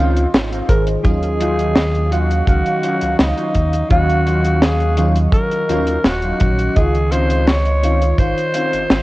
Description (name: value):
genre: vaporwave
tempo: 84 BPM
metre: 4/4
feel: straight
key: Eb dorian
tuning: A4 = 442 Hz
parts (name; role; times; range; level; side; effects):
- growling alto saxophone; melody; 0.0-9.0 s; Eb4 to Db5; -21 LUFS; equal; analog delay
- FM electric piano with soft pad layer; accompaniment; 0.0-9.0 s; Eb3 to F5; -22 LUFS; equal; phaser, analog chorus
- warbly tape-like pad; sustained chords; 0.1-9.0 s; Gb3 to Db6; -29 LUFS; right 2 dB; chorus, built-in reverb, phaser
- mellow electric guitar; riff; 0.0-8.8 s; Gb3 to F4; -25 LUFS; left 2 dB; analog chorus, analog delay
- chorused synth bass; bass; 0.0-9.0 s; Eb1 to Eb2; -18 LUFS; equal; tube saturation
- deep reggae drum kit; drums; 0.2-9.0 s; hi-hat, snare drum; -18 LUFS; equal; none
- kick drum; drums; 0.7-8.3 s; none; -15 LUFS; equal; none
room: studio reverb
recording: worn, warbling old tape, cassette tape, warbly pitch drift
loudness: -14 LUFS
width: side -18 dB against mid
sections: 0.0-9.0 A section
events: none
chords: 0.0 Dbmaj9; 1.0 Ebm9; 6.8 Dbmaj9